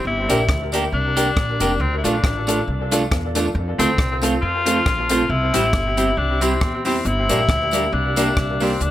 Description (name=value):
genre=ska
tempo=137 BPM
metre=4/4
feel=swing 56% on 8ths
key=unclear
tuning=A4 = 436 Hz
part: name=clear tenor saxophone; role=melody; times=0.0-8.9 s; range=C4 to F4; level=-22 LUFS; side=left 2 dB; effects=tape echo
part: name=upright bass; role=bass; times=0.1-8.9 s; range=F1 to F2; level=-24 LUFS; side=equal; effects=none
part: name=clean electric guitar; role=accompaniment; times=0.3-8.7 s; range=G3 to G4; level=-25 LUFS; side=right 5 dB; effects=plate reverb
part: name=clear upright piano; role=stabs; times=0.3-8.7 s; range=Bb3 to Bb4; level=-24 LUFS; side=left 2 dB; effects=tape echo, plate reverb
part: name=compact cocktail drum kit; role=drums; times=0.3-8.9 s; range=hi-hat, kick drum, rim click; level=-23 LUFS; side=equal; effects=none
part: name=tambourine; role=percussion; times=0.3-8.7 s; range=none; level=-34 LUFS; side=right 4 dB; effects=none
room=moderate studio reverb, RT60 0.6 s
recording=none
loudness=-17 LUFS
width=side -13 dB against mid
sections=0.0-8.9 A section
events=none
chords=0.1 Gm; 1.8 Dm; 3.5 F; 5.3 C; 7.1 Gm